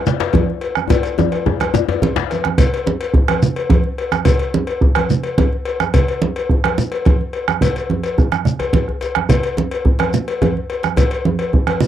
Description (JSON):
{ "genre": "west african traditional, West African drum ensemble", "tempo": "143 BPM (dotted quarters)", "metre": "12/8", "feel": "straight", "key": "none", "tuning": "none", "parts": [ { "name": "congas", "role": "percussion", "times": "0.1-11.9 s", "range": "none", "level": "-20 LUFS", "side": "right 5 dB", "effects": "none" }, { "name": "djembe", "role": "percussion", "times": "0.1-11.9 s", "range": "none", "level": "-22 LUFS", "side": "left 1 dB", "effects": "none" }, { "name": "djembe", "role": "percussion", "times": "0.1-2.3 s", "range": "none", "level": "-20 LUFS", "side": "left 9 dB", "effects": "none" }, { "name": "shekere", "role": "percussion", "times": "0.1-11.9 s", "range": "none", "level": "-21 LUFS", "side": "left 3 dB", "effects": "none" }, { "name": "cowbell", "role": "percussion", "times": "0.2-11.8 s", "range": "none", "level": "-22 LUFS", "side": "left 5 dB", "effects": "none" }, { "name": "bombo", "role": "percussion", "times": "0.3-11.8 s", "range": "none", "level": "-17 LUFS", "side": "right 2 dB", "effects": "none" } ], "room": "light reverb", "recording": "dry, close 1970s-style studio recording", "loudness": "-15 LUFS", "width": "side -11 dB against mid", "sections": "0.0-2.6 A section; 2.6-11.9 B section", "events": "drum fill 0.9-2.6, 8.6-9.3", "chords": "none" }